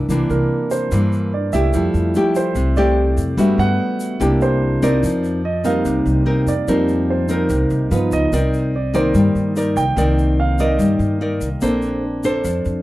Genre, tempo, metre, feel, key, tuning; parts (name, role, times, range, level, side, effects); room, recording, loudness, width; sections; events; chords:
bossa nova; 146 BPM; 4/4; straight; A4 = 442 Hz
nylon-string guitar; accompaniment; 0.0-12.8 s; G2 to D5; -19 LUFS; left 2 dB
warm concert grand piano; accompaniment; 0.0-12.8 s; Eb3 to G5; -21 LUFS; right 2 dB
upright bass; bass; 0.0-12.8 s; Bb1 to G2; -20 LUFS; equal
tube shaker; percussion; 0.1-12.8 s; -38 LUFS; left 5 dB
light reverb; dry, close 1970s-style studio recording; -15 LUFS; side -16 dB against mid
0.0-5.0 A section; 5.0-12.8 A section
grand piano solo 0.0-12.8
0.0 C9; 1.7 Fmaj9; 3.4 Gmaj7; 4.2 C7; 5.0 F7sus4; 7.9 Gaug7; 8.3 Cm9; 11.6 Bbmaj9